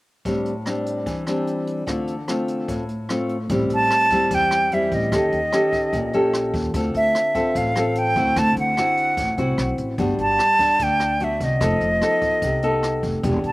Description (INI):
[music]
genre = bossa nova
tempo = 148 BPM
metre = 4/4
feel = straight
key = A minor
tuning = A4 = 441 Hz
[part]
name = nylon-string guitar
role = accompaniment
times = 0.3-13.5 s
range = A2 to A4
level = -23 LUFS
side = left 1 dB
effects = none
[part]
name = jazz brush drum kit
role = drums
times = 0.3-13.5 s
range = hi-hat, kick drum, rim click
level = -32 LUFS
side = equal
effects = none
[part]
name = upright bass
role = bass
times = 3.5-13.5 s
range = E1 to E2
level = -26 LUFS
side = equal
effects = none
[part]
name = bright silver concert flute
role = melody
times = 3.7-13.5 s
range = D#5 to A5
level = -20 LUFS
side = right 1 dB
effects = none
[sound]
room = little or no reverb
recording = recorded outdoors, with no room sound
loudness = -18 LUFS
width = side -20 dB against mid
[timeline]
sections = 0.3-3.5 A section; 3.5-13.5 B section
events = none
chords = 0.3 Am7; 1.9 Dm7; 3.5 Am7; 5.1 D#7#11; 6.7 Dm7; 8.4 D9; 10.0 Gmaj7; 11.6 F7#11